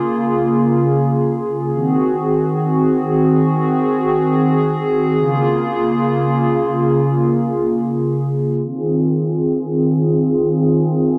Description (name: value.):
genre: hip hop.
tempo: free time.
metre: none.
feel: none.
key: Bb minor.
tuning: A4 = 440 Hz.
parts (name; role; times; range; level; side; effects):
hollow soft pad; solo; 0.0-11.2 s; Db3 to Ab4; -17 LUFS; equal; chorus.
room: light reverb.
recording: dark, warm production, low-pass filter.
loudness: -17 LUFS.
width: mono.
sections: 0.0-8.6 A section; 8.6-11.2 B section.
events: filter sweep 8.6-11.2.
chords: 0.0 Bbm7; 1.7 Ab7; 5.2 Bbm7; 8.6 Fm7.